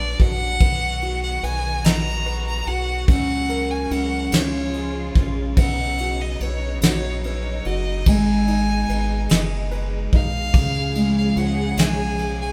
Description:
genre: six-eight pop ballad.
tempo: 48 BPM (dotted quarters).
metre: 6/8.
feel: straight.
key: unclear.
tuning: A4 = 440 Hz.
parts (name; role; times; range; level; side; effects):
rich violin; melody; 0.0-12.5 s; C#5 to A#5; -29 LUFS; equal; digital delay.
warm concert grand piano; accompaniment; 0.0-12.5 s; C#3 to D#5; -28 LUFS; equal; none.
muted studio string section; sustained chords; 0.0-12.5 s; B2 to G#4; -34 LUFS; equal; none.
round analog bass; bass; 0.0-12.5 s; F#1 to C#2; -28 LUFS; equal; none.
soft brush drum kit; drums; 0.2-12.4 s; kick drum, ride cymbal, snare drum; -23 LUFS; equal; none.
room: moderate studio reverb, RT60 0.5 s.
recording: band playing live in one room.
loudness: -21 LUFS.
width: mono.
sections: 0.0-12.5 A section.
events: none.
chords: 0.0 Bm; 0.6 B; 3.1 F#/C#; 4.3 C#; 5.6 Badd9; 8.1 G#m; 10.5 C#.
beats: | 0.61 1.84 | 3.08 4.32 | 5.57 6.82 | 8.06 9.30 | 10.54 11.77.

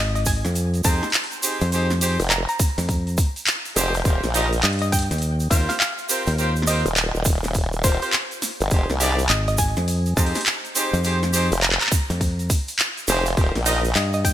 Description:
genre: glitch hop.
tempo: 103 BPM.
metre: 4/4.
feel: swing 63% on 16ths.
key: F minor.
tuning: A4 = 440 Hz.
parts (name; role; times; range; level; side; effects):
woody wave-folded pluck; melody; 0.0-14.3 s; C5 to Bb5; -29 LUFS; left 1 dB; chorus, cassette tape, digital delay.
fingered electric bass; bass; 0.0-14.3 s; Ab1 to G2; -22 LUFS; equal; tube saturation.
drum and bass drum kit; drums; 0.2-14.3 s; handclaps, hi-hat, snare drum; -24 LUFS; equal; none.
egg shaker; percussion; 0.2-14.3 s; none; -28 LUFS; right 5 dB; none.
electronic kick drum; drums; 0.3-14.3 s; none; -21 LUFS; equal; none.
brilliant horn section; stabs; 0.8-13.8 s; C4 to Eb5; -26 LUFS; right 1 dB; vintage 12-bit sampler grit, sidechain pumping, digital delay.
formant-sweep wobble bass; bass; 2.2-13.9 s; Eb1 to C2; -22 LUFS; equal; chorus, tube saturation.
room: light reverb.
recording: bright 1980s-style digital production.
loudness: -18 LUFS.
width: side -12 dB against mid.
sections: 0.0-14.3 A section.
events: none.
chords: 0.0 Fm7; 4.1 Eb69; 8.7 Fm7; 13.4 Eb69.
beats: 0.56 1.14 | 1.72 2.31 2.89 3.47 | 4.05 4.63 5.22 5.80 | 6.38 6.96 7.55 8.13 | 8.71 9.29 9.88 10.46 | 11.04 11.62 12.21 12.79 | 13.37 13.96.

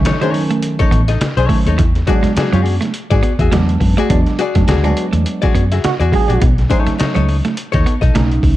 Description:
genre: funk.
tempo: 104 BPM.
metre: 4/4.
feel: swing 56% on 16ths.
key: unclear.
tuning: A4 = 440 Hz.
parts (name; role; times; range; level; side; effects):
clean electric guitar; riff; 0.0-8.5 s; E3 to B3; -23 LUFS; right 4 dB; spring reverb.
tine electric piano; stabs; 0.0-8.6 s; D#3 to D#4; -20 LUFS; right 2 dB; overdrive, phaser.
vintage muted fingered electric bass; bass; 0.0-8.6 s; A1 to G#2; -15 LUFS; equal; none.
archtop guitar, miked and amplified; accompaniment; 0.1-8.2 s; D#4 to E5; -20 LUFS; left 7 dB; none.
trip hop sampler-style drum kit; drums; 0.1-8.6 s; hi-hat, kick drum, snare drum; -16 LUFS; equal; none.
breathy trombone; second line; 5.8-6.5 s; F#4 to G#4; -20 LUFS; right 10 dB; none.
room: digital ambience.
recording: dark, warm production.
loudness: -12 LUFS.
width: side -15 dB against mid.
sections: 0.0-8.6 A section.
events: band accent 4.1-6.4.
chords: 0.0 B9; 1.8 E9; 6.4 B9.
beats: 0.06 0.64 1.22 | 1.79 2.37 2.95 3.53 | 4.10 4.68 5.26 5.84 | 6.41 6.99 7.57 8.15.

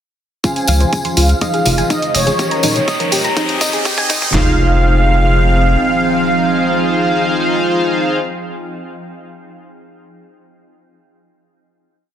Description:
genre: progressive house.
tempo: 123 BPM.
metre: 4/4.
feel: straight.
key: F minor.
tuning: A4 = 438 Hz.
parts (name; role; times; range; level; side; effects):
soft supersaw; melody; 0.4-8.2 s; Db5 to Ab5; -19 LUFS; right 2 dB; sidechain pumping, low-pass filter, dub echo.
shimmering ambient pad; sustained chords; 1.4-8.2 s; F3 to G5; -22 LUFS; right 1 dB; chorus, built-in reverb, sidechain pumping.
soft round pluck; arpeggios; 0.4-4.6 s; Eb4 to C6; -21 LUFS; equal; lush chorus, sidechain pumping, dub echo.
chorused polysynth; stabs; 0.4-8.2 s; C4 to F5; -19 LUFS; left 1 dB; sidechain pumping, dub echo.
electronic hi-hat; drums; 0.4-4.3 s; none; -21 LUFS; right 2 dB; high-pass filter on hats.
pop drum kit; drums; 0.4-4.5 s; handclaps, kick drum, snare drum, toms; -19 LUFS; equal; high-pass filter on kick, high-pass filter on snare, high-pass filter on toms.
tambourine; percussion; 0.4-4.3 s; none; -23 LUFS; left 2 dB; none.
riser and impact; sound effects; 2.0-8.2 s; none; -24 LUFS; equal; none.
saturated sub bass; bass; 0.7-5.8 s; Eb1 to Db2; -14 LUFS; equal; sidechain pumping.
congas and bongos; percussion; 0.7-4.3 s; none; -25 LUFS; left 3 dB; sidechain pumping on perc.
room: light reverb, digital ambience.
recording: dense, heavily limited modern master, high-pass filter.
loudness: -12 LUFS.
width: side -9 dB against mid.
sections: 0.4-4.3 build; 4.3-8.2 final chord.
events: build-up 0.4-4.3; filter sweep on synth pluck 0.4-4.3; filter sweep on analog polysynth 0.4-4.3; filter sweep 0.4-4.3; riser 2.0-4.3; drum fill 2.4-4.3.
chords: 0.4 Dbmaj7; 1.4 Fm7; 2.4 Eb7; 3.4 Abmaj7; 4.3 Fm7.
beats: | 0.44 0.93 1.42 1.90 | 2.39 2.88 3.37 3.85 | 4.34 4.83 5.32 5.81 | 6.29 6.78 7.27 7.76.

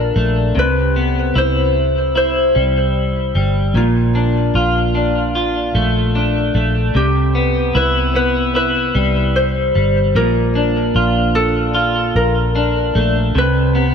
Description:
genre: dream pop.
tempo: 75 BPM.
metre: 4/4.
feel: straight.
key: unclear.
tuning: A4 = 440 Hz.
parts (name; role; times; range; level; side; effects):
concert harp; melody; 0.0-13.9 s; F4 to C5; -19 LUFS; left 2 dB; digital delay.
clean electric guitar; arpeggios; 0.0-13.9 s; Bb2 to F4; -17 LUFS; left 1 dB; analog chorus, digital delay.
vintage muted fingered electric bass; bass; 0.0-13.9 s; G1 to C2; -18 LUFS; equal; none.
room: moderate lush hall reverb, RT60 2.8 s.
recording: none.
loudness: -13 LUFS.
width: side -7 dB against mid.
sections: 0.0-13.9 A section.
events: none.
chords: 0.0 Bbmaj7; 0.6 Cmaj7; 3.8 Bbmaj7; 7.0 Cmaj7; 10.2 Bbmaj7; 13.4 Cmaj7(no3).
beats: | 0.55 1.35 2.15 2.95 | 3.75 4.55 5.35 6.15 | 6.95 7.75 8.55 9.35 | 10.15 10.95 11.75 12.55 | 13.35.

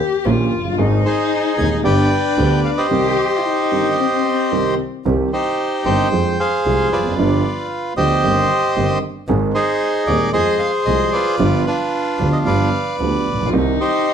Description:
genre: tango.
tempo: 113 BPM.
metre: 4/4.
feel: rubato.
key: C harmonic minor.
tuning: A4 = 440 Hz.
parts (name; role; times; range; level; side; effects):
warm cello; second line; 0.0-4.7, 13.5-14.1 s; C4 to G4; -21 LUFS; left 8 dB; none.
warm concert grand piano; accompaniment; 0.3-13.8 s; Eb1 to Ab4; -19 LUFS; right 2 dB; none.
clear double bass; bass; 0.3-13.8 s; F1 to F2; -22 LUFS; equal; none.
bandoneon; melody; 1.1-14.1 s; D4 to Ab5; -18 LUFS; right 1 dB; none.
room: moderate large studio reverb, RT60 0.9 s.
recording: none.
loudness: -15 LUFS.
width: side -8 dB against mid.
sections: 0.0-5.0 A section; 5.0-14.1 B section.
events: none.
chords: 0.0 Eb7; 0.8 Ab; 1.8 G; 2.9 Cm; 6.1 Fm; 7.2 G7; 8.2 Cm/G; 9.3 Ab; 10.3 Fm; 11.4 G7; 13.5 Cm.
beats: 0.26 | 0.79 1.31 1.85 2.38 | 2.91 3.44 3.98 4.51 | 5.05 5.58 6.12 6.65 | 7.18 7.70 8.23 8.76 | 9.29 9.81 10.34 10.87 | 11.39 11.92 12.46 13.00 | 13.53 14.07.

